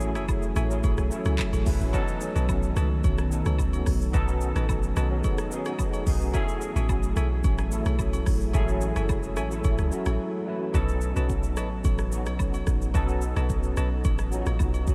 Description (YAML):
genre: amapiano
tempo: 109 BPM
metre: 4/4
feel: straight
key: unclear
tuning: A4 = 440 Hz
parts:
  - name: tine electric piano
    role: accompaniment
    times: 0.0-14.9 s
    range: F#3 to B4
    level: -33 LUFS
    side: equal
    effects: ensemble chorus
  - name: deep dark ambient pad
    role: sustained chords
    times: 0.0-10.7 s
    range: D#3 to B3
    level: -39 LUFS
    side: equal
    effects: chorus, built-in reverb, sidechain pumping
  - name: percussive organ stab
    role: stabs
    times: 0.0-13.9 s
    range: A4 to A5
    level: -41 LUFS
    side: equal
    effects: chorus, diffuse ambient delay
  - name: deep log drum bass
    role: bass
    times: 0.0-14.9 s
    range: F#1 to C#2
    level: -28 LUFS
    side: equal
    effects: none
  - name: afro-pop drum kit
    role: drums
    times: 0.0-14.9 s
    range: handclaps, hi-hat, kick drum, rim click, shaker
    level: -30 LUFS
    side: equal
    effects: none
  - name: agogo bells and woodblock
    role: percussion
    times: 0.2-14.9 s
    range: none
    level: -45 LUFS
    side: equal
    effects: none
room: light reverb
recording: none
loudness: -26 LUFS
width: mono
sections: 0.0-10.7 A section; 10.7-14.9 B section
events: drop 0.0-10.7; break 10.2-10.7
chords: 0.0 F#m9; 1.9 B7; 6.3 F#m9/A; 10.7 B7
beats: 0.29 0.84 1.39 | 1.94 2.49 3.04 3.59 | 4.14 4.69 5.24 5.79 | 6.34 6.89 7.44 7.99 | 8.54 9.09 9.64 10.20 | 10.74 11.30 11.85 12.40 | 12.95 13.50 14.05 14.60